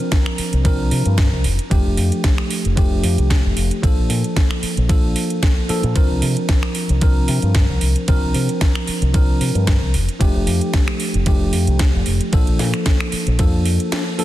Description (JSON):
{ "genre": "nu-disco, nu disco", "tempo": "113 BPM", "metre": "4/4", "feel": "swing 54% on 16ths", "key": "unclear", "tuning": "A4 = 440 Hz", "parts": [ { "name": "tine electric piano", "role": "accompaniment", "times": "0.0-14.2 s", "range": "F3 to Bb4", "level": "-22 LUFS", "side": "equal", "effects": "analog chorus, sidechain pumping, digital delay" }, { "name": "house drum kit", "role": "drums", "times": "0.0-14.2 s", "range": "finger snaps, hi-hat, ride cymbal, snare drum", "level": "-25 LUFS", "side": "right 1 dB", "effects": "none" }, { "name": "electronic kick drum", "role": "drums", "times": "0.1-13.5 s", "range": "none", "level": "-16 LUFS", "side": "equal", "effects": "none" }, { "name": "fingered electric bass with an envelope filter", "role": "bass", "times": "0.4-13.8 s", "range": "F1 to C3", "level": "-18 LUFS", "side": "equal", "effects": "none" } ], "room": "light reverb", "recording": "dense, heavily limited modern master", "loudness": "-15 LUFS", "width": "side -14 dB against mid", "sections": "0.0-14.2 A section", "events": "break 13.9-14.2", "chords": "0.0 C9sus4; 1.4 F69; 3.8 Bbmaj7; 6.0 C9sus4; 9.9 F69; 12.3 Bbmaj7" }